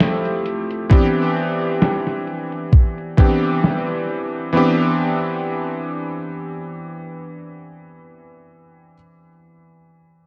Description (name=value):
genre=vaporwave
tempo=66 BPM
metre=4/4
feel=swing 55% on 16ths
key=C major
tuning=A4 = 441 Hz
part: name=clear electric grand piano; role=accompaniment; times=0.0-10.3 s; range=E3 to G4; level=-22 LUFS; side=equal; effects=lush chorus, analog delay
part: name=gated 80s digital drum machine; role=drums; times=0.0-4.5 s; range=hi-hat, snare drum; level=-22 LUFS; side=equal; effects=gated reverb, gated reverb snare, low-pass filter on hats, low-pass filter on snare, low-pass filter on room
part: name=electronic kick drum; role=drums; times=0.9-3.4 s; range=none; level=-14 LUFS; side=equal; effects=none
room=moderate lush hall reverb, RT60 2.5 s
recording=cassette tape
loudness=-19 LUFS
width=mono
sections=0.0-4.5 A section; 4.5-8.2 B section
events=filter sweep on drum 0.0-4.5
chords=0.0 Fmaj9; 0.9 Cmaj9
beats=0.00 | 0.91 1.82 2.73 3.64 | 4.55 5.46 6.37 7.28